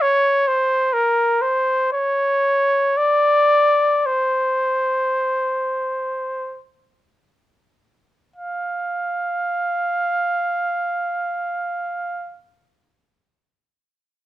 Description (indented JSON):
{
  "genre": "classical, free, expressive piece for unaccompanied trumpet",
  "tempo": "free time",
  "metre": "none",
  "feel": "none",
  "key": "unclear",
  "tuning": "A4 = 440 Hz",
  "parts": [
    { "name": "warm trumpet", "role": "solo", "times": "0.0-12.4 s", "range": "Bb4 to F5", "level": "-18 LUFS", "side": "equal", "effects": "none" }
  ],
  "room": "little or no reverb",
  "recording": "close, detailed microphones",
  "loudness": "-18 LUFS",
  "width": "side -14 dB against mid",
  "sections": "0.0-8.4 A section; 8.4-14.2 B section",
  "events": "slowing down 0.0-8.4",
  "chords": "none"
}